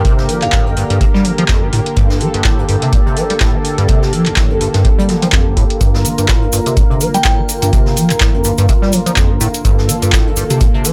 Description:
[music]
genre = acid house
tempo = 125 BPM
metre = 4/4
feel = swing 56% on 16ths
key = G minor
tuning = A4 = 441 Hz
[part]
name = warm analog pad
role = sustained chords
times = 0.0-10.9 s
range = D3 to Bb4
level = -22 LUFS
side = equal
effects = chorus, sidechain pumping
[part]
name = liquid acid bass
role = riff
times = 0.0-10.9 s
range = F2 to G3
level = -18 LUFS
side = equal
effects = phaser, overdrive, analog chorus, sidechain pumping, digital delay
[part]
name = booming analog drum machine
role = drums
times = 0.0-10.9 s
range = handclaps, hi-hat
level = -21 LUFS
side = equal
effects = studio ambience
[part]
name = electronic kick drum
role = drums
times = 0.0-10.7 s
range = none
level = -16 LUFS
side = equal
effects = studio ambience
[part]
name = jazz brush drum kit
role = drums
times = 0.1-10.9 s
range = hi-hat, snare drum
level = -32 LUFS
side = equal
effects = none
[part]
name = glassy synth bell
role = melody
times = 0.4-0.6, 7.1-7.3 s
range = F5 to G5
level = -25 LUFS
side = equal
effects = chorus, phaser, vintage 12-bit sampler grit, digital delay
[part]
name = cabasa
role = percussion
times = 5.8-10.9 s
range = none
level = -25 LUFS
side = equal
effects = none
[sound]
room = light reverb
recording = none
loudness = -13 LUFS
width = mono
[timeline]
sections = 0.0-10.9 A section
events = none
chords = 0.0 Gm

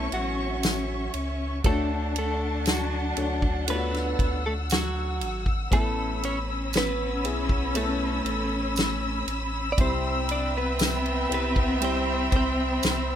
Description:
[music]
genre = pop ballad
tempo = 59 BPM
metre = 4/4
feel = straight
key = A major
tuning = A4 = 440 Hz
[part]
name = direct-recorded clean electric guitar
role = melody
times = 0.0-13.2 s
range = F#3 to D5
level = -31 LUFS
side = right 3 dB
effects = analog chorus
[part]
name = rich studio cello section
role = second line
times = 0.0-13.2 s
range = C4 to D4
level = -32 LUFS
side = left 2 dB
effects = none
[part]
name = warm concert grand piano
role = accompaniment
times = 0.0-13.2 s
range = A2 to C#5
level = -35 LUFS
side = left 4 dB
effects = none
[part]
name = dark studio string section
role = sustained chords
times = 0.0-13.2 s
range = E5 to E6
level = -32 LUFS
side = equal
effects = none
[part]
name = sub bass with octave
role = bass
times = 0.0-13.2 s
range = G#1 to D2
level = -31 LUFS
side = equal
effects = none
[part]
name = natural country drum kit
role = drums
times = 0.1-13.1 s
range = kick drum, ride cymbal, snare drum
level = -27 LUFS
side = equal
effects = none
[part]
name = tambourine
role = percussion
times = 0.6-13.1 s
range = none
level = -36 LUFS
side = right 4 dB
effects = none
[sound]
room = little or no reverb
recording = rough home demo mix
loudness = -24 LUFS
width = side -10 dB against mid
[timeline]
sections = 0.0-13.2 A section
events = none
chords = 0.0 Aadd9; 1.6 Dmaj7; 5.7 Aadd9; 9.8 Cmaj7

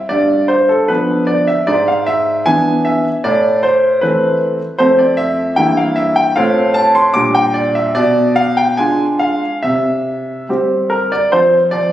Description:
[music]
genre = classical-period piano sonatina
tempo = 76 BPM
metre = 2/4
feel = rubato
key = F major from 4.8 s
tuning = A4 = 440 Hz
[part]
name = clear baby grand piano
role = solo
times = 0.0-11.9 s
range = F2 to D6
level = -12 LUFS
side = equal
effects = none
[sound]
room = wet recital hall reverb, RT60 1.4 s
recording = recorded on a phone in the room, club reverb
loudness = -11 LUFS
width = side -12 dB against mid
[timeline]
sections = 0.0-11.3 A section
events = none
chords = 0.1 G7; 1.7 E7/G#; 3.2 Am; 4.8 F; 5.6 Edim/G; 6.4 F/A; 7.2 Gm/Bb; 8.0 Bdim7; 9.6 C; 11.3 F5

